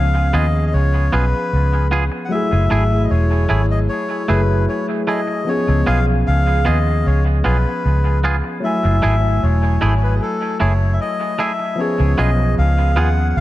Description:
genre	reggae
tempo	76 BPM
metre	4/4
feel	straight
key	F# dorian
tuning	A4 = 440 Hz
part	melodica	melody	0.0-13.4 s	G#4 to F#5	-23 LUFS	left 2 dB	dub echo
part	barky tine electric piano	accompaniment	0.0-13.4 s	E#3 to G#5	-22 LUFS	left 2 dB	overdrive, phaser, dub echo
part	vintage muted fingered electric bass	bass	0.0-13.4 s	E1 to D#2	-16 LUFS	equal	none
part	twangy electric guitar	stabs	0.3-13.1 s	A3 to G#4	-24 LUFS	right 2 dB	dub echo
room	light reverb, digital ambience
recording	dark, warm production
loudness	-15 LUFS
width	side -15 dB against mid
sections	0.0-13.4 A section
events	none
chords	0.0 C#7; 2.3 F#m9; 5.5 C#7; 8.6 F#m9; 11.8 C#7

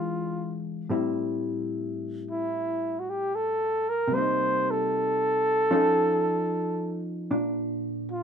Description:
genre	jazz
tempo	75 BPM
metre	4/4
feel	swing 69% on 8ths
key	unclear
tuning	A4 = 440 Hz
part	breathy flugelhorn	melody	0.0-8.2 s	E4 to C5	-25 LUFS	equal	none
part	hollow-body jazz guitar	accompaniment	0.0-8.2 s	A2 to A4	-29 LUFS	left 1 dB	none
room	light reverb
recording	minimal, uncompressed stereo recording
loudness	-25 LUFS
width	side -7 dB against mid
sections	0.9-8.2 A section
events	none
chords	0.0 E7b9; 0.9 Am7; 4.1 Cm7; 5.7 Faug7; 7.3 Bb

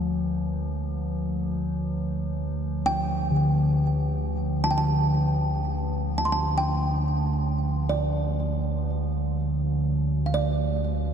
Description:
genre	world meditative, free-time meditation music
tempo	free time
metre	none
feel	none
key	D minor pentatonic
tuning	A4 = 440 Hz
part	kalimba	melody	0.0-11.1 s	D5 to C6	-29 LUFS	right 2 dB	ping-pong delay
part	metallic inharmonic drone	drone	0.0-11.1 s	D2	-26 LUFS	right 2 dB	chorus, built-in reverb
part	bronze singing bowl	texture	0.0-11.1 s	D3 to F3	-28 LUFS	left 3 dB	none
room	wet huge ambient reverb, RT60 6.5 s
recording	dark, warm production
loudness	-23 LUFS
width	side -7 dB against mid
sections	0.0-11.1 A section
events	none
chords	none

